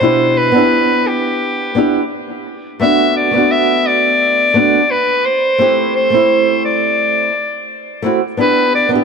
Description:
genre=chillout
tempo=86 BPM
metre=4/4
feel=straight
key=unclear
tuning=A4 = 442 Hz
part: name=clear soprano saxophone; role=melody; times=0.0-8.9 s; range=G4 to E5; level=-14 LUFS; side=left 1 dB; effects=tape echo
part: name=flamenco guitar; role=accompaniment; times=0.0-9.0 s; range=B2 to G4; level=-15 LUFS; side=right 2 dB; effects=auto-pan, tape echo
room=moderate lush hall reverb, RT60 2.7 s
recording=dark, warm production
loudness=-11 LUFS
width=side -5 dB against mid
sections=0.0-9.0 A section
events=none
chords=0.0 Cmaj9/B (rootless); 2.8 D69/A; 5.6 D9sus4; 8.4 G6/B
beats=| 0.02 0.72 1.42 2.11 | 2.81 3.51 4.21 4.90 | 5.60 6.30 7.00 7.70 | 8.39

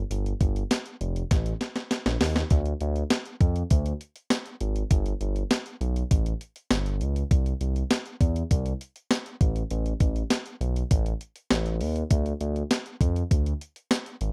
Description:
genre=1980s-style pop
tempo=100 BPM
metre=4/4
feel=straight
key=D dorian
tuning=A4 = 442 Hz
part: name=smooth synth bass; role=bass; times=0.0-14.3 s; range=F1 to F2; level=-29 LUFS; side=equal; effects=none
part: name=gated 80s digital drum machine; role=drums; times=0.1-14.3 s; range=hi-hat, kick drum, snare drum, tambourine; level=-27 LUFS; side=equal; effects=gated reverb, gated reverb snare
room=little or no reverb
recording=dry, close 1970s-style studio recording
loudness=-27 LUFS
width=mono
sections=0.0-2.5 A section; 2.5-14.3 A section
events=drum fill 1.3-2.5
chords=none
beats=| 0.11 0.71 1.31 1.91 | 2.51 3.11 3.71 4.31 | 4.91 5.51 6.11 6.71 | 7.31 7.91 8.51 9.11 | 9.71 10.31 10.91 11.51 | 12.11 12.71 13.31 13.91

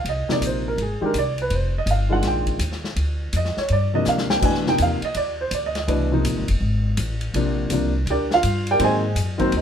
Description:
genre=modal jazz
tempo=165 BPM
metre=4/4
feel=swing 65% on 8ths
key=F dorian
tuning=A4 = 440 Hz
part: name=warm baby grand piano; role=accompaniment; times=0.0-9.6 s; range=B2 to Ab5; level=-21 LUFS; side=right 1 dB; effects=none
part: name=upright bass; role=bass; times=0.0-9.6 s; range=F1 to Ab2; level=-24 LUFS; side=equal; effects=none
part: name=vintage drum kit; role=drums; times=0.1-9.6 s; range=crash cymbal, hi-hat, kick drum, ride cymbal, snare drum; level=-29 LUFS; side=left 2 dB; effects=none
room=moderate studio reverb, RT60 0.9 s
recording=minimal, uncompressed stereo recording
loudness=-19 LUFS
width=side -8 dB against mid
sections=0.0-9.6 A section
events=drum fill 4.1-4.4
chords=0.0 Fm7; 1.5 Gm/F; 4.4 Fm7; 7.3 Gm; 8.8 Ab7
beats=| 0.05 0.42 0.78 1.14 | 1.51 1.87 2.24 2.60 | 2.97 3.33 3.70 4.06 | 4.42 4.79 5.15 5.52 | 5.88 6.25 6.61 6.97 | 7.34 7.70 8.07 8.43 | 8.79 9.16 9.52

